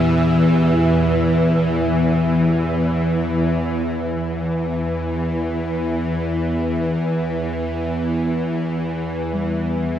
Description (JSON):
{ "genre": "dark ambient drone", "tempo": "free time", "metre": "none", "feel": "none", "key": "E minor", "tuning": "A4 = 440 Hz", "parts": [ { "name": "gamelan-type bossed gongs", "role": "arpeggios", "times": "0.0-10.0 s", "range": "A#2 to G4", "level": "-29 LUFS", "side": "left 2 dB", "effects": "none" }, { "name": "bowed-like drone", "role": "drone", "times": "0.0-10.0 s", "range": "E2 to E3", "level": "-18 LUFS", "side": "equal", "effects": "built-in reverb" }, { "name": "wind-like tuned noise texture", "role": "texture", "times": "0.0-4.2 s", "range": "E5", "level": "-32 LUFS", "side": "right 3 dB", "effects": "built-in reverb" } ], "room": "wet huge ambient reverb, RT60 8.6 s", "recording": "none", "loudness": "-18 LUFS", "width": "side -10 dB against mid", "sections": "0.0-4.2 A section; 4.2-10.0 B section", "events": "none", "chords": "0.0 Em", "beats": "free time" }